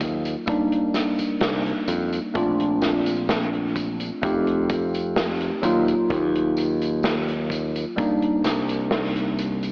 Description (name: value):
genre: vaporwave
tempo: 64 BPM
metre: 4/4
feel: straight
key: unclear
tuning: A4 = 439 Hz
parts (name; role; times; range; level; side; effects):
- mellow tine electric piano; accompaniment; 0.0-9.7 s; Gb3 to G4; -23 LUFS; equal; wide subtle chorus, analog delay
- modern bright fingered electric bass; bass; 0.0-9.7 s; Bb1 to F2; -26 LUFS; equal; none
- kick drum; drums; 0.0-8.2 s; none; -32 LUFS; equal; none
- natural country drum kit; drums; 0.0-9.7 s; hi-hat, snare drum, tambourine; -27 LUFS; equal; none
room: wet lush hall reverb, RT60 2.6 s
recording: dreamy mix soaked in reverb, cassette tape, AM radio sound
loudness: -20 LUFS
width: side -32 dB against mid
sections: 0.0-9.7 A section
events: none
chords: 0.5 Cm7; 2.4 Bbmaj9; 4.2 F9; 5.6 Ebmadd9; 8.0 Cm7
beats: 0.48 1.41 | 2.35 3.29 4.23 5.16 | 6.10 7.04 7.98 8.91